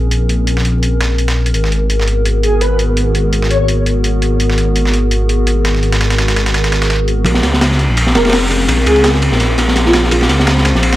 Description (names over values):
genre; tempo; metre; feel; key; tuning
drum and bass, jungle; 168 BPM; 4/4; swing 55% on 16ths; unclear; A4 = 440 Hz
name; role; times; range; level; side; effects
warbly tape-like pad; sustained chords; 0.0-11.0 s; Cb4 to C5; -19 LUFS; left 1 dB; chorus, built-in reverb
dark detuned saw bass; bass; 0.0-11.0 s; F1 to Db2; -14 LUFS; equal; none
dusty soul sampler-style drum kit; drums; 0.1-11.0 s; hi-hat, snare drum; -20 LUFS; right 1 dB; high-pass filter on hats, high-pass filter on snare
breathy flute-like synth lead; melody; 2.4-3.7, 8.1-10.2 s; F4 to Db5; -17 LUFS; equal; ensemble chorus, cassette tape, dub echo
crunchy breakbeat drum kit; drums; 7.2-11.0 s; hi-hat, kick drum, ride cymbal, snare drum; -13 LUFS; equal; high-pass filter on kick, high-pass filter on cymbals, high-pass filter on hats, high-pass filter on snare, high-pass filter on room
room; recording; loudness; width
light reverb, studio reverb; vinyl crackle; -11 LUFS; side -15 dB against mid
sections
0.0-7.3 A section; 7.3-11.0 B section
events
build-up 7.3-11.0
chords
0.0 Bbm9; 1.5 Abm9; 7.3 Bbm9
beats
| 0.11 0.47 0.83 1.19 | 1.54 1.90 2.26 2.61 | 2.97 3.33 3.69 4.04 | 4.40 4.76 5.11 5.47 | 5.83 6.19 6.54 6.90 | 7.26 7.61 7.97 8.33 | 8.69 9.04 9.40 9.76 | 10.11 10.47 10.83